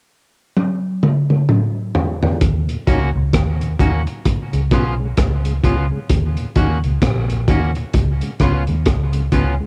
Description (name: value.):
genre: dub reggae.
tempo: 65 BPM.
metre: 4/4.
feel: swing 60% on 16ths.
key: Eb minor.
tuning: A4 = 441 Hz.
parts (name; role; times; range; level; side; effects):
crunchy breakbeat drum kit; drums; 0.6-9.6 s; hi-hat, kick drum, rim click, toms; -20 LUFS; equal; cassette tape.
vintage muted fingered electric bass; bass; 2.4-9.6 s; Bb1 to Eb2; -21 LUFS; equal; none.
mellow tonewheel organ; accompaniment; 2.7-9.7 s; Eb2 to Gb4; -28 LUFS; equal; chorus vibrato, stopped rotary speaker, cassette tape.
electric guitar at the edge of break-up; accompaniment; 2.9-9.5 s; Bb3 to Gb4; -29 LUFS; equal; lush chorus, cassette tape, tape echo.
room: little or no reverb.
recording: home recording on cassette.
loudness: -18 LUFS.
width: mono.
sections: 0.0-2.4 A section; 2.4-9.7 B section.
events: drum fill 0.6-2.4.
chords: 0.0 N.C.; 2.4 Ebm7; 4.3 Db7; 6.1 Ebm7; 7.9 Db7.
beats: 0.57 1.49 | 2.41 3.33 4.26 5.18 | 6.10 7.02 7.95 8.87.